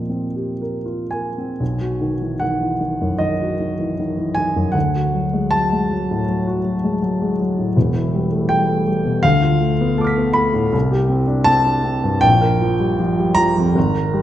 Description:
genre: classical, impressionist solo piano.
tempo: 79 BPM.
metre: 4/4.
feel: uneven beats, rubato.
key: unclear.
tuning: A4 = 438 Hz.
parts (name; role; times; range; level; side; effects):
warm grand piano; solo; 0.0-14.2 s; E1 to B6; -16 LUFS; equal; none.
room: wet recital hall reverb, RT60 1.4 s.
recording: dark, warm production.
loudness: -16 LUFS.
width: side -12 dB against mid.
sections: 0.0-1.6 A section; 1.6-14.2 B section.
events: none.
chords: 0.0 Eb69; 1.6 B; 4.8 D; 7.8 Em; 9.2 Dm6; 10.7 C5; 12.2 A#5.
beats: 0.62 | 1.61 2.42 3.21 4.00 | 4.75 5.53 6.28 7.01 | 7.76 8.51 9.25 10.00 | 10.74 11.48 12.25 13.02 | 13.76.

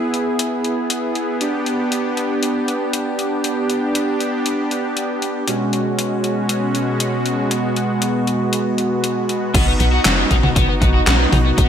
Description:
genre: synthwave.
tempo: 118 BPM.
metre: 4/4.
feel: straight.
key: unclear.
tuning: A4 = 440 Hz.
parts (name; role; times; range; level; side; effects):
soft supersaw; sustained chords; 0.0-11.7 s; B2 to G#4; -19 LUFS; equal; sidechain pumping.
gated 80s digital drum machine; drums; 0.1-11.7 s; crash cymbal, handclaps, hi-hat, snare drum, toms; -21 LUFS; left 1 dB; gated reverb, gated reverb snare, overdrive.
overdriven semi-hollow guitar; riff; 9.5-11.7 s; B3 to F#4; -21 LUFS; left 2 dB; wide subtle chorus, ping-pong delay.
tight sequencer bass; bass; 9.5-11.7 s; F#1 to B1; -17 LUFS; equal; sidechain pumping.
electronic kick drum; drums; 9.5-11.7 s; none; -18 LUFS; equal; none.
room: moderate plate reverb, RT60 2.6 s.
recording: bright 1980s-style digital production.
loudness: -16 LUFS.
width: side -8 dB against mid.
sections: 0.0-9.5 A section; 9.5-11.7 B section.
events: none.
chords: 0.0 E/B; 1.4 G/B; 5.5 F#sus2/B; 9.5 B.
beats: 0.39 0.90 | 1.41 1.92 2.43 2.94 | 3.44 3.95 4.46 4.97 | 5.48 5.99 6.49 7.00 | 7.51 8.02 8.53 9.04 | 9.54 10.05 10.56 11.07 | 11.58.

